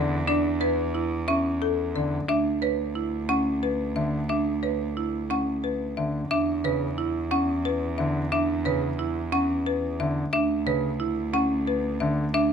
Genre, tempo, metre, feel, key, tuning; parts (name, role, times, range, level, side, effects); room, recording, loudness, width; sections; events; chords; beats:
classical, minimalist pattern music; 179 BPM; 6/4; straight; D major; A4 = 441 Hz
folk marimba with hard mallets; melody; 0.0-12.5 s; A4 to F#5; -29 LUFS; left 7 dB
clear grand piano; accompaniment; 0.0-12.2 s; C#3 to D3; -29 LUFS; left 2 dB
rich cello; bass; 0.0-12.5 s; D2 to E2; -31 LUFS; right 2 dB
marimba with hard mallets; arpeggios; 0.3-12.5 s; C#4 to B4; -26 LUFS; right 3 dB
light reverb; -23 LUFS; side -7 dB against mid
0.0-12.5 A section
0.0 Asus4/E (rootless); 2.3 Dsus2; 6.3 N.C.; 10.3 Dmaj7sus2
| 0.28 0.61 0.95 1.28 1.62 1.95 | 2.29 2.62 2.96 3.29 3.63 3.96 | 4.30 4.63 4.97 5.30 5.64 5.97 | 6.31 6.64 6.98 7.32 7.65 7.99 | 8.32 8.66 8.99 9.33 9.66 10.00 | 10.33 10.67 11.00 11.34 11.67 12.01 | 12.34